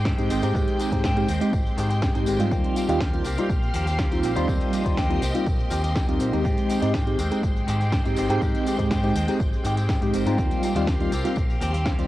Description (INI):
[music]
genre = filtered disco house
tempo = 122 BPM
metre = 4/4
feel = straight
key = Eb major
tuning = A4 = 440 Hz
[part]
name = string machine, full ensemble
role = sustained chords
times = 0.0-12.1 s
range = Ab3 to C6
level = -33 LUFS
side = equal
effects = ensemble chorus, sidechain pumping, cassette tape
[part]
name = direct-recorded clean electric guitar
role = riff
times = 0.0-12.1 s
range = Eb3 to G4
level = -30 LUFS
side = left 1 dB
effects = phaser, sidechain pumping, cassette tape
[part]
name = overdriven fingered electric bass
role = bass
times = 0.0-12.1 s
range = Ab1 to Ab2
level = -27 LUFS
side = equal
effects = sidechain pumping
[part]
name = electronic kick drum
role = drums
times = 0.1-12.0 s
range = none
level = -26 LUFS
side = equal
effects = cassette tape
[part]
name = house drum kit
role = drums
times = 0.1-12.1 s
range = hi-hat, shaker, snare drum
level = -34 LUFS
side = equal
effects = sidechain pumping on perc, cassette tape, sidechain pumping on hats, sidechain pumping on cymbals
[part]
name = tambourine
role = percussion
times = 0.1-12.1 s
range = none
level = -42 LUFS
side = left 4 dB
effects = sidechain pumping on perc
[part]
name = tine electric piano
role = accompaniment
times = 0.2-12.1 s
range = G3 to G4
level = -24 LUFS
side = equal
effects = medium stereo tremolo, phaser, sidechain pumping, cassette tape
[sound]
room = light reverb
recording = home recording on cassette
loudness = -21 LUFS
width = side -15 dB against mid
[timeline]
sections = 0.0-12.1 A section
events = none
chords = 0.0 Abmaj7; 2.5 Eb69; 6.4 Abmaj7; 10.4 Eb69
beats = 0.06 | 0.55 1.04 1.53 2.02 | 2.51 3.01 3.50 3.99 | 4.48 4.97 5.46 5.96 | 6.45 6.94 7.43 7.92 | 8.42 8.91 9.40 9.89 | 10.38 10.88 11.37 11.86